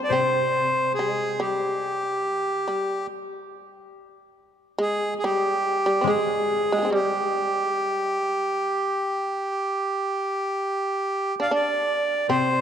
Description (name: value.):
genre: japanese traditional, Japanese chamber music.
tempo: 70 BPM.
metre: 4/4.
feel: rubato.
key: unclear.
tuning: A4 = 439 Hz.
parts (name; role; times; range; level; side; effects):
accordion; melody; 0.0-12.6 s; G4 to F5; -23 LUFS; right 1 dB; none.
shamisen; second line; 0.0-12.6 s; G3 to G4; -28 LUFS; right 1 dB; none.
koto; accompaniment; 0.0-12.6 s; C3 to Ab3; -31 LUFS; left 7 dB; none.
room: wet church reverb, RT60 3.6 s.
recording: dark, warm production.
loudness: -22 LUFS.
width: side -8 dB against mid.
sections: 0.0-12.3 A section.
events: none.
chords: none.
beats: 0.12 0.98 | 1.84 2.69 3.54 4.39 | 5.23 6.08 6.94 7.81 | 8.69 9.57 10.47 11.39 | 12.31.